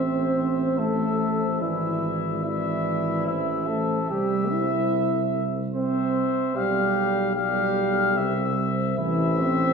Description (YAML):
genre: classical, brass quintet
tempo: 73 BPM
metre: 3/4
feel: rubato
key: unclear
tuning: A4 = 440 Hz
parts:
  - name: clear trumpet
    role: melody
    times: 0.0-9.7 s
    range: E5 to F5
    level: -28 LUFS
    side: left 6 dB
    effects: none
  - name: warm flugelhorn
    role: second line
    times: 0.0-9.7 s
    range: E4 to E5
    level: -30 LUFS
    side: right 3 dB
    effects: none
  - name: mellow euphonium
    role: accompaniment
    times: 0.0-9.7 s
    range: E3 to E4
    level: -26 LUFS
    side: right 1 dB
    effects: none
  - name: warm French horn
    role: accompaniment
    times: 0.0-9.7 s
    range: C5 to D5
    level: -33 LUFS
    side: left 6 dB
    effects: none
  - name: warm tuba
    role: bass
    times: 0.0-9.7 s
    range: G#1 to C2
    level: -28 LUFS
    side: right 2 dB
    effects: none
room: wet scoring stage reverb, RT60 1.5 s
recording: heard from further back in the room, nothing above 10.5 kHz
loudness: -22 LUFS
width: side -5 dB against mid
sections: 0.0-9.7 A section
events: none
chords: 0.0 Am; 1.6 E7/G#; 3.3 Am; 4.1 C; 6.6 G7/B; 8.2 C; 9.0 Am